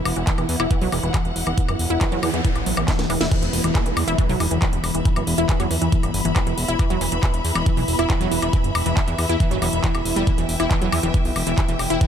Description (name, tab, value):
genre	psychedelic trance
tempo	138 BPM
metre	4/4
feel	straight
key	E minor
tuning	A4 = 440 Hz
part	evolving wavetable pad	sustained chords	0.0-12.1 s	E3	-29 LUFS	right 1 dB	phaser, built-in reverb, sidechain pumping
part	warm studio string section	texture	0.0-12.1 s	B3 to B5	-29 LUFS	left 1 dB	sidechain pumping
part	fat analog bass	bass	0.1-12.0 s	E1 to E2	-25 LUFS	equal	none
part	drum and bass drum kit	drums	0.1-12.1 s	crash cymbal, handclaps, hi-hat, snare drum, woodblock	-27 LUFS	left 2 dB	none
part	wide unison pluck	riff	0.2-12.1 s	E3 to E4	-25 LUFS	moving between left 4 dB and right 2 dB	auto-pan, sidechain pumping, digital delay
part	electronic kick drum	drums	0.3-12.1 s	none	-20 LUFS	equal	none
part	noise sweep and downlifter	sound effects	1.8-6.8 s	none	-31 LUFS	right 1 dB	none
room	light reverb, digital ambience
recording	none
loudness	-18 LUFS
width	side -8 dB against mid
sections	0.0-3.3 A section; 3.3-12.1 B section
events	noise sweep 1.8-3.3; drum fill 2.9-3.3; drop 3.3-12.1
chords	0.0 E5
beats	0.27 0.71 1.14 | 1.58 2.01 2.45 2.88 | 3.31 3.75 4.18 4.62 | 5.05 5.49 5.92 6.36 | 6.79 7.23 7.66 8.10 | 8.53 8.97 9.40 9.84 | 10.27 10.71 11.14 11.58 | 12.01